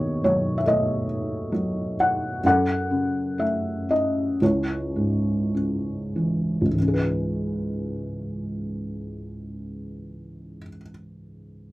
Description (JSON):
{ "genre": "classical, lyrical solo piano", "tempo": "48-74 BPM", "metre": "4/4", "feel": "rubato", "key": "C# minor", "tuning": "A4 = 440 Hz", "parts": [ { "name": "felt-muted upright piano", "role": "solo", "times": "0.0-11.7 s", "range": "C#2 to F#5", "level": "-23 LUFS", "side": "equal", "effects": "none" } ], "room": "light reverb", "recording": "none", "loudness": "-22 LUFS", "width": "side -18 dB against mid", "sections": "0.0-6.8 A section; 6.8-11.7 B section", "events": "slowing down 0.0-6.8", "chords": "0.0 B7/D#; 2.4 F#m; 4.4 C#m; 6.8 C#m7" }